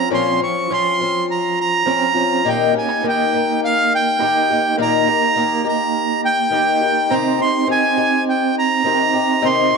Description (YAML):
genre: acoustic folk duo or small band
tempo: 103 BPM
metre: 4/4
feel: straight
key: unclear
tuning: A4 = 441 Hz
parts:
  - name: accordion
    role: melody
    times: 0.0-9.8 s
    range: F5 to Db6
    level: -17 LUFS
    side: right 2 dB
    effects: none
  - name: fingerpicked twelve-string acoustic guitar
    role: accompaniment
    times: 0.0-9.8 s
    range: Bb2 to G4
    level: -21 LUFS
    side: left 13 dB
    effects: none
  - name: electric guitar through a small old amp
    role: arpeggios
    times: 0.0-9.8 s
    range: F3 to G4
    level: -22 LUFS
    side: right 10 dB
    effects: tremolo
room: moderate plate reverb, RT60 2.6 s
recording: 1960s-style stereo with parts hard left and right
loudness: -15 LUFS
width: side -4 dB against mid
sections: 0.0-9.8 A section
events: none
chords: 0.0 Bbmadd9; 2.5 Eb/Bb; 7.1 Cm